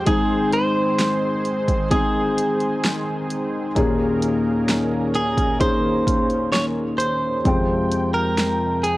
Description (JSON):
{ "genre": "pop ballad", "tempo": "65 BPM", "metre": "4/4", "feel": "straight", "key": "Ab major", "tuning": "A4 = 440 Hz", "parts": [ { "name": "direct-recorded clean electric guitar", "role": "melody", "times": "0.0-9.0 s", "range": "Ab4 to Db5", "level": "-22 LUFS", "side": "right 1 dB", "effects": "cassette tape" }, { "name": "felt-muted upright piano", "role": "accompaniment", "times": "0.0-9.0 s", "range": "Eb2 to G5", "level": "-22 LUFS", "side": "left 2 dB", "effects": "cassette tape" }, { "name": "lush unison pad", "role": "sustained chords", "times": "0.0-9.0 s", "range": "C3 to G5", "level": "-27 LUFS", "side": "right 1 dB", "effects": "chorus, cassette tape" }, { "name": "deep house drum kit", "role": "drums", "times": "0.1-9.0 s", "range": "hi-hat, kick drum, snare drum", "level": "-23 LUFS", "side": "equal", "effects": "none" } ], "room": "light reverb", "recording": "home recording on cassette", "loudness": "-18 LUFS", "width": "side -18 dB against mid", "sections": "0.0-9.0 A section", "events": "none", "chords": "0.1 Ab; 3.8 Eb7sus4; 7.5 Fmadd9", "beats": "| 0.07 0.99 1.91 2.84 | 3.76 4.68 5.61 6.53 | 7.45 8.37" }